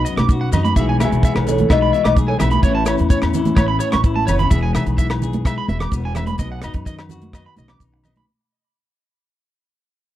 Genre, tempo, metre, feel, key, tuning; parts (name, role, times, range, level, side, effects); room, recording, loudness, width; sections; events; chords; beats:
highlife guitar band; 128 BPM; 4/4; straight; E major; A4 = 440 Hz
electric guitar through a small old amp; melody; 0.0-3.1 s; E4 to D#5; -21 LUFS; left 3 dB; lush chorus
clean electric guitar; accompaniment; 0.0-8.3 s; E2 to G#4; -23 LUFS; left 6 dB
electric guitar at the edge of break-up; arpeggios; 0.0-8.2 s; C#5 to D6; -24 LUFS; right 5 dB
upright bass; bass; 0.0-8.2 s; E1 to F#2; -20 LUFS; equal
tight funk drum kit; drums; 0.1-8.3 s; hi-hat, kick drum, rim click; -18 LUFS; equal
maracas; percussion; 0.1-8.2 s; -37 LUFS; left 13 dB
agogo bells; percussion; 0.2-8.2 s; -31 LUFS; left 4 dB
congas; percussion; 0.2-8.3 s; -24 LUFS; right 3 dB
studio ambience; dry, close 1970s-style studio recording; -15 LUFS; side -13 dB against mid
0.0-4.5 A section; 4.5-8.3 B section
drum fill 4.2-4.5; fade-out 4.5-8.3
0.0 B; 0.8 E/B; 2.6 Aadd9; 4.5 E; 6.4 B
0.29 | 0.76 1.23 1.70 2.17 | 2.64 3.10 3.57 4.04 | 4.51 4.98 5.45 5.92 | 6.39 6.86 7.33 7.80